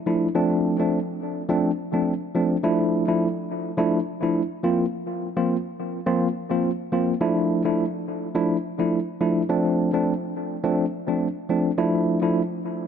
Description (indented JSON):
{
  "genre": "afrobeats",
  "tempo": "105 BPM",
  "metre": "4/4",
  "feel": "swing 55% on 16ths",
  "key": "D minor",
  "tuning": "A4 = 440 Hz",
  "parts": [
    { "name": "tine electric piano", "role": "solo", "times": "0.1-12.4 s", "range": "F3 to F4", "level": "-21 LUFS", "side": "equal", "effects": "medium stereo tremolo, analog delay" }
  ],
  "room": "moderate echo chamber reverb, RT60 2.1 s",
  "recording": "echo-heavy mix",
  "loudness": "-21 LUFS",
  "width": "side -8 dB against mid",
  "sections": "0.0-12.9 A section",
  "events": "none",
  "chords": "0.4 F6; 2.6 Dmadd9; 4.6 Bbsus2; 7.2 Dmadd9; 9.5 F6; 11.8 Dmadd9"
}